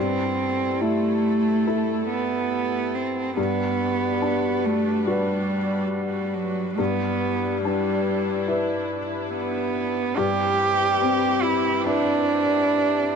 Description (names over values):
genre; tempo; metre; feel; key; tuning
neoclassical piano and strings; 71 BPM; 4/4; rubato; G major; A4 = 440 Hz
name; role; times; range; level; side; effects
warm cello; second line; 0.0-13.2 s; F#3 to G4; -23 LUFS; right 3 dB; none
felt-muted upright piano; accompaniment; 0.0-13.2 s; G2 to B4; -26 LUFS; left 5 dB; none
warm chamber string section; sustained chords; 0.0-13.2 s; C4 to B4; -33 LUFS; equal; none
room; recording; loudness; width
moderate huge ambient reverb, RT60 6.4 s; worn, warbling old tape, cassette tape, warbly pitch drift; -21 LUFS; side -6 dB against mid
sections
0.0-13.2 A section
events
none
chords
0.0 Am/G; 3.4 Gmaj7; 6.8 Em7/G; 10.2 Cmaj7/G